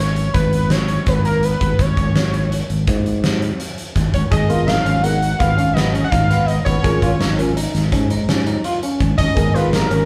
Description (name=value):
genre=progressive instrumental, band music in an uneven meter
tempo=166 BPM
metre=7/4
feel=straight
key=unclear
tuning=A4 = 442 Hz
part: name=fat analog lead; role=melody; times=0.0-10.1 s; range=A#4 to F#5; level=-24 LUFS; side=equal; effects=none
part: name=fingered electric bass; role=bass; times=0.0-10.1 s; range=G#1 to G#2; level=-21 LUFS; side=equal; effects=none
part: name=huge arena drum kit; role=drums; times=0.2-10.0 s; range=hi-hat, kick drum, snare drum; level=-22 LUFS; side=equal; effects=none
part: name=electric guitar at the edge of break-up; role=arpeggios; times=4.3-10.0 s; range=B3 to G#4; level=-25 LUFS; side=equal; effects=none
part: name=barky tine electric piano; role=accompaniment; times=4.5-9.9 s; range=B3 to A#4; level=-27 LUFS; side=equal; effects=none
room=moderate large studio reverb, RT60 1.1 s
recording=band playing live in one room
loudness=-17 LUFS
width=mono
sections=0.0-10.1 A section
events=none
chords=0.0 C#5/G#; 4.3 G#madd9; 6.8 A#m/G#; 9.4 G#madd9